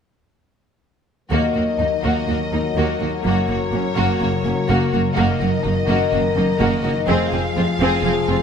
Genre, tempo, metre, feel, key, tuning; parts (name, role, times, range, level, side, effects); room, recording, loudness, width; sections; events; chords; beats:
cinematic, heroic adventure film score; 125 BPM; 4/4; straight; A4 = 439 Hz
rich symphonic violin section; melody; 1.3-8.4 s; Db5 to F5; -28 LUFS; left 2 dB
warm symphonic violin section; second line; 1.3-8.4 s; Db4 to Ab4; -26 LUFS; left 2 dB
rich symphonic viola section; accompaniment; 1.3-8.4 s; Bb3 to C4; -25 LUFS; right 2 dB
warm French horn section; sustained chords; 1.3-8.4 s; Eb3 to Bb4; -24 LUFS; left 5 dB
concert harp; arpeggios; 1.3-8.4 s; F2 to Bb4; -25 LUFS; left 8 dB
rich symphonic cello section; bass; 1.3-8.4 s; Eb2 to Gb2; -24 LUFS; right 4 dB
rich symphonic double bass section; bass; 1.3-8.4 s; F1 to Eb2; -24 LUFS; right 4 dB
moderate scoring stage reverb, RT60 1.5 s; -17 LUFS; side -7 dB against mid
1.3-8.4 A section
build-up 1.3-8.4
1.3 Ebm; 3.2 Gb; 5.2 Ebm/Gb; 7.1 Fm
| 1.32 1.80 2.29 2.77 | 3.25 3.73 4.21 4.69 | 5.17 5.65 6.13 6.61 | 7.08 7.56 8.04